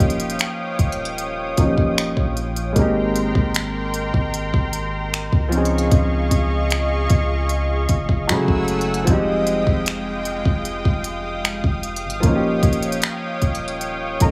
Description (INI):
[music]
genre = contemporary R&B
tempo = 76 BPM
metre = 4/4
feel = straight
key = unclear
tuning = A4 = 435 Hz
[part]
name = warm grand piano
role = accompaniment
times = 0.0-14.3 s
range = F3 to Bb5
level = -25 LUFS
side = equal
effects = none
[part]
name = lush unison pad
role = sustained chords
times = 0.0-14.3 s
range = Ab3 to Fb6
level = -28 LUFS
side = equal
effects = chorus
[part]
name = long sustained 808-style bass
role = bass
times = 0.0-14.3 s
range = Eb1 to Db3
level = -28 LUFS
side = equal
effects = none
[part]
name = smooth R&B drum kit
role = drums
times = 0.0-14.3 s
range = finger snaps, hi-hat, kick drum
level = -22 LUFS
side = equal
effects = none
[sound]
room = digital ambience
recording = studio ambience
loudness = -20 LUFS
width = mono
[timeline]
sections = 0.0-14.3 A section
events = grand piano fill 13.8-14.3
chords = 0.0 Eb9; 2.8 Abmaj9; 5.5 Dbmaj9; 8.3 Gbm9; 9.1 Fm9; 12.2 Eb9